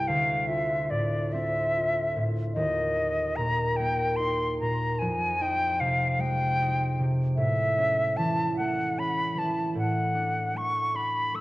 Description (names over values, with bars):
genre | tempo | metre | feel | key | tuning
classical, impressionist duo for flute and harp | 50 BPM (dotted quarters) | 6/8 | rubato | A major from 7.4 s | A4 = 440 Hz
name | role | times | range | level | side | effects
bright concert flute | melody | 0.0-11.4 s | D5 to E6 | -26 LUFS | equal | none
concert harp | accompaniment | 0.0-11.4 s | C2 to F4 | -28 LUFS | equal | none
room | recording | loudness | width
moderate scoring stage reverb, RT60 2.1 s | worn, warbling old tape, cassette tape, warbly pitch drift | -24 LUFS | side -18 dB against mid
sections
0.0-11.4 A section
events
none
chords
0.1 Dm9; 2.6 Eb5; 5.0 Fm9; 7.4 Amaj7; 9.8 Aadd11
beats
| 0.07 1.32 | 2.56 3.78 | 5.00 6.18 | 7.36 8.56 | 9.76 10.95